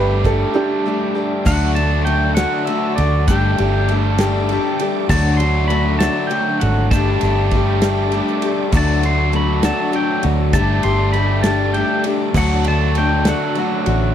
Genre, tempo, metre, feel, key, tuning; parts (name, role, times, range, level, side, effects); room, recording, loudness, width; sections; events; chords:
folk rock and heartland rock; 66 BPM (dotted quarters); 6/8; straight; A4 = 439 Hz
warm upright piano; second line; 0.0-1.3 s; D4 to B4; -21 LUFS; right 6 dB
picked steel-string acoustic guitar; accompaniment; 0.0-14.1 s; D3 to G4; -21 LUFS; left 6 dB
bright tonewheel organ; sustained chords; 0.0-14.1 s; F#3 to D5; -31 LUFS; right 1 dB
biting overdriven guitar; riff; 0.0-14.1 s; D3 to G4; -22 LUFS; right 1 dB
vintage muted fingered electric bass; bass; 0.0-14.1 s; G1 to D2; -18 LUFS; right 1 dB
natural country drum kit; drums; 0.2-14.0 s; crash cymbal, kick drum, ride cymbal, snare drum; -24 LUFS; right 1 dB
tube shaker; percussion; 0.3-13.4 s; -36 LUFS; right 22 dB
pedal steel guitar; melody; 1.5-14.1 s; D5 to C6; -22 LUFS; equal
little or no reverb; dry, close 1970s-style studio recording; -15 LUFS; side -9 dB against mid
0.0-1.5 A section; 1.5-14.1 B section
upright piano solo 0.0-1.5; break 0.6-1.5
0.0 Gsus2; 1.5 D; 3.3 Gsus2; 5.1 D; 6.9 Gsus2; 8.7 D; 10.5 Gsus2; 12.4 D